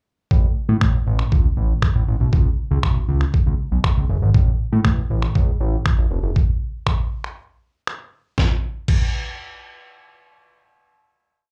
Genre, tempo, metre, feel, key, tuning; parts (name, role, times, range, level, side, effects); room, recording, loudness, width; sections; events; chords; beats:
dance-pop; 119 BPM; 4/4; straight; A major; A4 = 441 Hz
fat analog bass; bass; 0.3-6.3 s; E1 to A2; -21 LUFS; equal; sidechain pumping
lo-fi sampler-style drum kit; drums; 0.3-9.0 s; crash cymbal, finger snaps, kick drum, snare drum; -20 LUFS; equal
little or no reverb; live gig heard through the venue's PA, club reverb; -20 LUFS; mono
0.3-8.4 verse; 8.4-11.5 final hit
break 7.4-8.4
| 0.31 0.81 1.32 1.82 | 2.33 2.83 3.34 3.84 | 4.34 4.85 5.35 5.86 | 6.36 6.87 7.37 7.87 | 8.38 8.88